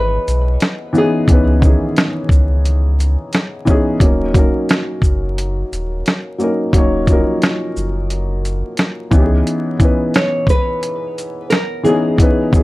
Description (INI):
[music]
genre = lo-fi hip hop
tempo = 88 BPM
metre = 4/4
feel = swing 65% on 16ths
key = C# dorian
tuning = A4 = 440 Hz
[part]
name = nylon-string guitar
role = melody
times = 0.0-1.6, 10.2-12.6 s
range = G#4 to C#5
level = -20 LUFS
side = equal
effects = low-pass filter, tape echo
[part]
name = felt-muted upright piano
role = accompaniment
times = 0.0-12.6 s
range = D#3 to D#5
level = -18 LUFS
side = left 1 dB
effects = cassette tape, low-pass filter
[part]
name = warm sub bass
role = bass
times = 0.0-9.4 s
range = D#1 to C#2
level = -17 LUFS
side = equal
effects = none
[part]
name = dusty soul sampler-style drum kit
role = drums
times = 0.3-12.6 s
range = hi-hat, kick drum, shaker, snare drum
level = -14 LUFS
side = equal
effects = none
[sound]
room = light reverb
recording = vinyl crackle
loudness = -13 LUFS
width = side -19 dB against mid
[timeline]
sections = 0.0-12.6 A section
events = none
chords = 0.0 C#m9; 4.0 D#m7; 9.1 C#m9